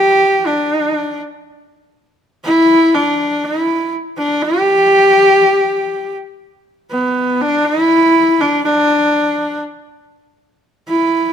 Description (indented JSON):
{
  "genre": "mongolian traditional",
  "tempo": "free time",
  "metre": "none",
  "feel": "none",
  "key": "G gong mode",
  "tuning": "A4 = 440 Hz",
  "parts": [
    { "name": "bright horsehead fiddle", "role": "solo", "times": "0.0-11.3 s", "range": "B3 to G4", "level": "-12 LUFS", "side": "equal", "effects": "none" }
  ],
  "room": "moderate recital hall reverb, RT60 1.4 s",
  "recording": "close, detailed microphones",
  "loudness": "-12 LUFS",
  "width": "side -8 dB against mid",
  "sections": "0.0-6.4 A section; 6.4-11.3 B section",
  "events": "none",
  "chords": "none",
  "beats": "free time"
}